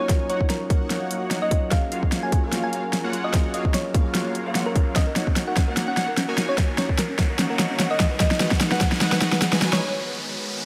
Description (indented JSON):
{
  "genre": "future bass",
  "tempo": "148 BPM",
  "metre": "4/4",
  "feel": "swing 54% on 16ths, half-time",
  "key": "Eb minor",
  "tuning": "A4 = 439 Hz",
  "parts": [
    { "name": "thumb-piano-like synth pluck", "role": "melody", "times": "0.0-9.8 s", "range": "Bb4 to Ab5", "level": "-32 LUFS", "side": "equal", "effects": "subtle chorus, sidechain pumping, tape echo" },
    { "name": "tine electric piano", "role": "accompaniment", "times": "0.0-5.0 s", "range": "Gb3 to F5", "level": "-34 LUFS", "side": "equal", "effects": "sidechain pumping" },
    { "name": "shimmering ambient pad", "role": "sustained chords", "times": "0.4-10.7 s", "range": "Eb3 to Cb5", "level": "-40 LUFS", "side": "equal", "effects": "none" },
    { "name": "big bright polysynth", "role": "riff", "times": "0.0-9.8 s", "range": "Ab3 to Ab5", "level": "-32 LUFS", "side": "equal", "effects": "chorus, phaser, sidechain pumping" },
    { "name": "riser", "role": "sound effects", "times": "3.7-10.7 s", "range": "none", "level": "-38 LUFS", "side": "equal", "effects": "none" },
    { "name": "big-room dance drum kit", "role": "drums", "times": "0.1-9.8 s", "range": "hi-hat, snare drum", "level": "-26 LUFS", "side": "equal", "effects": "overdrive" },
    { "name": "electronic kick drum", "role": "drums", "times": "0.1-8.9 s", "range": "none", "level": "-24 LUFS", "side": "equal", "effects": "none" },
    { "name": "thumb-piano-like synth pluck", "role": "arpeggios", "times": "5.0-9.8 s", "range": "Db4 to Eb5", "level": "-35 LUFS", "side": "equal", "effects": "chorus, sidechain pumping, tape echo" }
  ],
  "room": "moderate lush hall reverb, RT60 2.0 s",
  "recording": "none",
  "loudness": "-23 LUFS",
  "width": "mono",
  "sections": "0.0-10.7 A section",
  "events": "build-up 0.0-10.7; drum fill 0.0-9.8; filter sweep on analog polysynth 0.0-10.7; break 9.8-10.7",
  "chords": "0.0 Ebm7; 1.7 Gbmaj7; 5.0 Ebm7; 8.0 Abm7",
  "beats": "| 0.09 0.50 0.91 1.31 | 1.72 2.12 2.53 2.93 | 3.34 3.74 4.15 4.55 | 4.96 5.36 5.77 6.17 | 6.58 6.99 7.39 7.80 | 8.20 8.61 9.01 9.42 | 9.82 10.23 10.63"
}